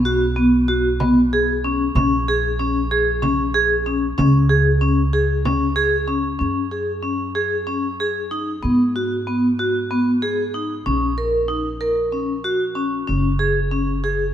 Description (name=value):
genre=contemporary instrumental, chamber music in an uneven meter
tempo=189 BPM (eighths)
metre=7/8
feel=straight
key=F# major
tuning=A4 = 440 Hz
part: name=upright bass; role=bass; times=0.0-14.3 s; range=F#1 to G#2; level=-23 LUFS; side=right 1 dB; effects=none
part: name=vibraphone with medium mallets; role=arpeggios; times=0.1-14.2 s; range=B3 to A#4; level=-18 LUFS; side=left 1 dB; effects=none
part: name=frame drum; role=percussion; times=0.1-5.8 s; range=none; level=-26 LUFS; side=right 3 dB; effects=none
room=moderate plate reverb, RT60 2.7 s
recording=heard from further back in the room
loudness=-17 LUFS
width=side -10 dB against mid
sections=0.0-6.4 A section; 6.4-14.3 B section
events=none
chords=0.0 B5; 2.0 A#m7; 4.2 C#5; 6.4 F#sus2; 8.6 G#m7; 10.9 D#7(no3)/A# (rootless); 13.1 F#sus2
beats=0.04 0.36 0.68 1.00 1.32 1.64 | 1.96 2.27 2.59 2.91 3.23 3.55 3.86 | 4.18 4.50 4.82 5.14 5.45 5.77 6.09 | 6.41 6.72 7.04 7.36 7.68 8.00 8.31 | 8.63 8.95 9.27 9.59 9.90 10.22 10.54 | 10.86 11.17 11.49 11.81 12.13 12.44 12.76 | 13.08 13.40 13.71 14.03